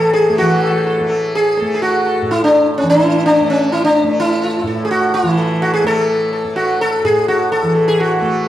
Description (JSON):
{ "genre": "indian classical", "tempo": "127 BPM", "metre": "4/4", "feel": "straight", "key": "A raga bilaval", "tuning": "A4 = 440 Hz", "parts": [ { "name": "sitar", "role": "melody", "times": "0.0-8.5 s", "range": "C#4 to A4", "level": "-13 LUFS", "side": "equal", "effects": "none" }, { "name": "tanpura", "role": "drone", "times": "0.0-8.5 s", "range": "A2 to A3", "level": "-20 LUFS", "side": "right 1 dB", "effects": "none" } ], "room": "wet recital hall reverb, RT60 1.5 s", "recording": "dark, warm production", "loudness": "-12 LUFS", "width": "side -12 dB against mid", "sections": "0.4-8.5 A section", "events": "none", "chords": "none" }